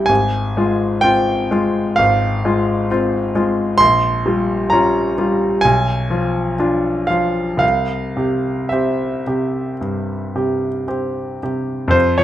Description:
classical, romantic nocturne for solo piano; 54-66 BPM; 4/4; rubato; A4 = 440 Hz
clear concert grand piano; solo; 0.0-12.2 s; Ab1 to C6; -15 LUFS; equal
light reverb; -15 LUFS; side -12 dB against mid
0.0-11.9 A section
0.1 Fm/Ab; 3.8 Gm7b5/Bb; 5.6 Bdim7; 7.6 C

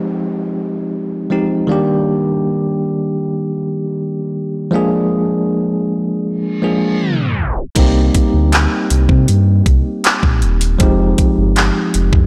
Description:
contemporary R&B; 79 BPM; 4/4; straight; C minor; A4 = 440 Hz
bell-like tine electric piano; accompaniment; 0.0-12.3 s; Eb3 to Ab4; -19 LUFS; equal
downlifter and reverse cymbal; sound effects; 0.0-7.8 s; -31 LUFS; equal
sub bass with octave; bass; 7.8-12.3 s; Eb1 to C3; -16 LUFS; equal
trap drum kit; drums; 7.8-12.3 s; handclaps, hi-hat, kick drum; -16 LUFS; equal
light reverb, digital ambience; blown-out, overdriven recording, overdrive, tape stop; -16 LUFS; mono
0.0-7.8 A section; 7.8-12.3 B section
reverse cymbal 6.5-7.8; tape stop 7.0-7.8
0.0 Fm9; 1.7 Ebmaj7; 4.7 Bb7; 7.8 Cm7; 10.8 Fm9

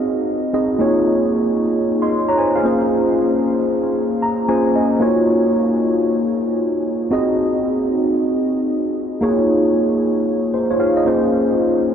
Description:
R&B; 114 BPM; 4/4; swing 65% on 16ths; A4 = 438 Hz
mellow tine electric piano; solo; 0.0-11.9 s; Bb3 to C6; -15 LUFS; equal; analog chorus, analog delay
wet huge ambient reverb, RT60 8.1 s; dreamy mix soaked in reverb; -15 LUFS; side -8 dB against mid
0.0-11.9 A section
tine electric piano fill 4.0-5.0
0.0 Ab7; 0.8 Db69; 5.0 Ebm9; 7.1 Ab7; 9.2 Db69

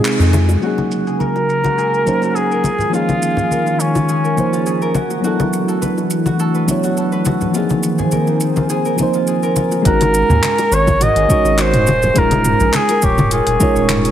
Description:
sunset chillout; 104 BPM; 4/4; swing 54% on 16ths; Ab mixolydian; A4 = 440 Hz
clear flugelhorn; melody; 0.0-5.0, 9.9-14.1 s; Db4 to Eb5; -17 LUFS; equal; tape echo
mellow FM electric piano; accompaniment; 0.0-14.1 s; F3 to Db5; -19 LUFS; right 1 dB; chorus, auto-pan, tape echo
lush unison pad; sustained chords; 0.0-9.8 s; C3 to Ab4; -21 LUFS; left 1 dB; chorus
deep house drum kit; drums; 0.0-14.1 s; handclaps, hi-hat, shaker, toms; -22 LUFS; right 1 dB; overdrive, low-pass filter on perc, low-pass filter on snare, low-pass filter on hats, low-pass filter on toms, low-pass filter on room
round analog bass; bass; 0.2-0.6, 9.9-14.1 s; Eb1 to F2; -17 LUFS; equal
congas and bongos; percussion; 0.3-13.7 s; -22 LUFS; left 2 dB
concert harp; arpeggios; 0.6-14.1 s; F4 to Db5; -22 LUFS; equal; low-pass filter, tape echo
electronic kick drum; drums; 9.9-13.7 s; -18 LUFS; equal; overdrive
moderate lush hall reverb, RT60 2.7 s; heavily compressed radio sound; -13 LUFS; side -10 dB against mid
0.6-9.9 A section; 9.9-14.1 B section
break 0.0-0.6; band accent 0.0; filter sweep on analog synth pad 0.6-9.9; filter sweep on harp 0.6-9.9
0.0 Bb9sus4; 0.6 Ab9sus4; 2.6 Eb9sus4; 5.0 E9sus4; 7.5 Bb9sus4; 9.9 Ab9sus4; 11.9 Eb9sus4

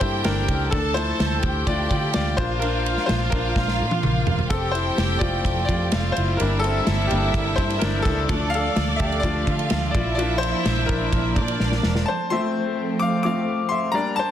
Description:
piano-driven pop; 127 BPM; 4/4; straight; F major; A4 = 440 Hz
warm studio violin section; second line; 0.0-12.1 s; D4 to A5; -27 LUFS; right 2 dB
bright concert grand piano; accompaniment; 0.0-14.3 s; F3 to D6; -24 LUFS; left 3 dB
vintage muted fingered electric bass; bass; 0.0-12.0 s; E1 to D3; -25 LUFS; equal
modern studio drum kit; drums; 0.0-12.1 s; hi-hat, kick drum, ride cymbal, snare drum, toms; -26 LUFS; equal
dark studio string section; sustained chords; 4.5-14.3 s; F3 to D4; -30 LUFS; right 3 dB
light reverb, small room ambience; dense, heavily limited modern master; -20 LUFS; side -10 dB against mid
0.0-12.1 A section; 12.1-14.3 A section
grand piano solo 0.0-12.1, 12.1-14.3; drum fill 3.6-4.5, 11.6-12.1
0.0 Gm; 0.7 Dm; 2.4 Bb; 4.5 F; 6.4 Gm; 8.3 Dm; 9.9 Bb; 12.1 F

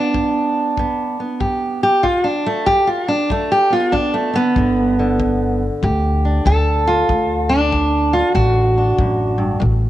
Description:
acoustic country blues, solo or duo; 95 BPM; 4/4; swing 64% on 8ths; A4 = 440 Hz
fingerpicked steel-string acoustic guitar; melody; 0.0-9.9 s; D2 to A4; -16 LUFS; right 1 dB
kick drum; drums; 0.1-9.8 s; -26 LUFS; left 2 dB
upright bass; bass; 4.6-9.9 s; G1 to D2; -18 LUFS; equal
moderate echo chamber reverb, RT60 2.2 s; 1960s-style stereo; -14 LUFS; side -13 dB against mid
0.0-9.9 A section
steel-string acoustic guitar solo 0.0-9.9
0.0 G; 7.1 D

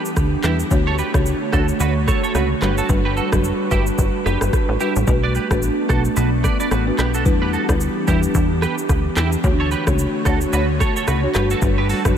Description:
afrobeats; 110 BPM; 4/4; swing 58% on 16ths; B minor; A4 = 440 Hz
airy breathy pad; sustained chords; 0.0-12.2 s; D3 to C#5; -24 LUFS; right 2 dB; chorus, sidechain pumping
clean electric guitar; riff; 0.0-12.0 s; E4 to D5; -25 LUFS; right 5 dB; analog chorus, tape echo
afro-pop drum kit; drums; 0.1-12.2 s; handclaps, hi-hat, kick drum, rim click, shaker; -22 LUFS; equal; overdrive
plucky analog bass; bass; 0.2-12.2 s; F#1 to E2; -20 LUFS; equal
folk marimba with soft mallets; accompaniment; 0.4-12.2 s; G3 to C#5; -24 LUFS; left 2 dB
moderate huge ambient reverb, RT60 7.8 s; dreamy mix soaked in reverb; -16 LUFS; side -9 dB against mid
0.0-5.1 A section; 5.1-12.2 B section
0.0 Em7; 0.7 Dmaj7; 2.6 Gmaj7; 5.1 Bm7; 7.3 Em7; 9.4 Dmaj7; 11.3 Gmaj7

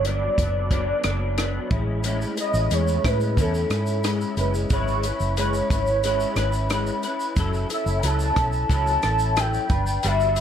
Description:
indie pop, bedroom pop; 90 BPM; 4/4; straight; F# minor; A4 = 437 Hz
warm velvety synth lead; melody; 0.0-10.4 s; A4 to B5; -25 LUFS; equal; lush chorus, slapback echo
electric guitar through a small old amp; accompaniment; 0.0-10.4 s; G2 to B4; -27 LUFS; left 3 dB; ensemble chorus, warbly pitch drift
vintage muted fingered electric bass; bass; 0.0-10.4 s; F#1 to A2; -25 LUFS; right 1 dB
compact cocktail drum kit; drums; 0.0-10.4 s; hi-hat, kick drum, rim click, shaker; -27 LUFS; equal
light reverb; -20 LUFS; side -9 dB against mid
0.0-10.4 A section
0.0 Gmaj7; 1.7 Amaj7; 4.7 C#m7; 7.4 F#m7; 9.7 Gmaj7

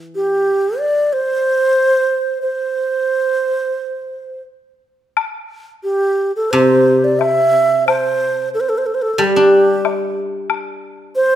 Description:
chinese traditional, Chinese chamber ensemble; 91 BPM; 4/4; rubato; C gong mode; A4 = 440 Hz
guzheng; accompaniment; 0.0-0.5, 6.5-11.1 s; C3 to D4; -15 LUFS; equal
xiao; melody; 0.2-11.4 s; G4 to E5; -15 LUFS; right 2 dB
woodblock; percussion; 5.2-10.6 s; -22 LUFS; left 8 dB
light reverb; minimal, uncompressed stereo recording; -14 LUFS; side -11 dB against mid
0.0-5.2 A section; 5.2-11.4 B section

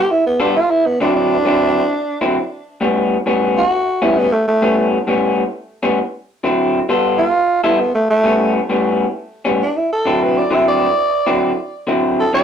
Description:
blues; 133 BPM; 4/4; swing 67% on 8ths; A4 = 440 Hz
growling tenor saxophone; melody; 0.0-12.4 s; A3 to E5; -16 LUFS; right 1 dB; digital delay
electric guitar through a small old amp; riff; 0.4-12.4 s; A2 to A4; -16 LUFS; left 1 dB
moderate studio ambience, RT60 0.5 s; rough rehearsal-room recording, tube saturation; -14 LUFS; side -8 dB against mid
0.0-9.6 A section; 9.6-12.4 B section
tenor saxophone solo 0.0-9.6
0.0 G9; 0.6 D9; 2.4 A9; 6.0 D9; 6.9 G9; 7.8 A9; 9.6 D9

